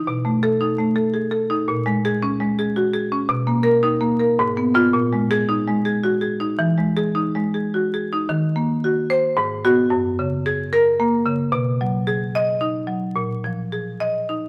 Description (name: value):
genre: classical, contemporary piece for solo marimba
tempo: 110 BPM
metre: 3/4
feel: straight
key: unclear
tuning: A4 = 442 Hz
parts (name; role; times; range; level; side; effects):
- marimba with medium hard mallets; solo; 0.0-14.5 s; Gb2 to D#5; -20 LUFS; equal; none
room: moderate stone room reverb, RT60 1.2 s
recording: vinyl crackle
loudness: -21 LUFS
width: mono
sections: 0.0-8.3 A section; 8.3-14.5 B section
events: none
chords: 0.1 B7; 1.7 Bbm7; 3.3 Bmaj7; 4.4 Abm6; 4.9 Bb7sus4; 6.6 Emaj7; 8.3 Ebm6; 9.4 Abm7; 9.9 Gbadd9; 11.5 B6; 13.2 Bb7sus4